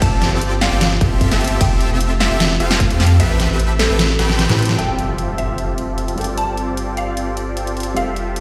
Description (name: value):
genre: future bass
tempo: 151 BPM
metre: 4/4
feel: half-time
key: unclear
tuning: A4 = 439 Hz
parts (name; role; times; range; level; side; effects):
- mallet-like synth pluck; melody; 0.0-8.2 s; A4 to A5; -28 LUFS; equal; ensemble chorus, cassette tape, sidechain pumping, delay
- supersaw chords; riff; 0.0-8.4 s; C4 to G5; -24 LUFS; equal; sidechain pumping, low-pass filter, digital delay
- saturated sub bass; bass; 0.0-8.4 s; F1 to A2; -22 LUFS; equal; sidechain pumping
- dubstep drum kit; drums; 0.0-8.4 s; hi-hat, ride cymbal, snare drum; -23 LUFS; equal; overdrive
- electronic kick drum; drums; 0.0-2.9 s; none; -19 LUFS; equal; overdrive
- dark baby grand piano; accompaniment; 4.8-8.4 s; G3 to E5; -32 LUFS; equal; sidechain pumping, digital delay
- impact; sound effects; 4.8-6.4 s; none; -30 LUFS; equal; none
room: moderate digital room reverb, RT60 1.1 s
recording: played on a big sound system in a bare room, large studio reverb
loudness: -17 LUFS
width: mono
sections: 0.0-4.8 A section; 4.8-8.4 B section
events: drop 0.0-4.8; kick drops out 3.2-4.8; drum fill 4.2-4.8; band accent 4.7; impact 4.8-6.4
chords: 0.0 G9sus4; 1.6 Fmaj9; 3.2 Am9; 4.8 Fmaj9; 6.2 G9sus4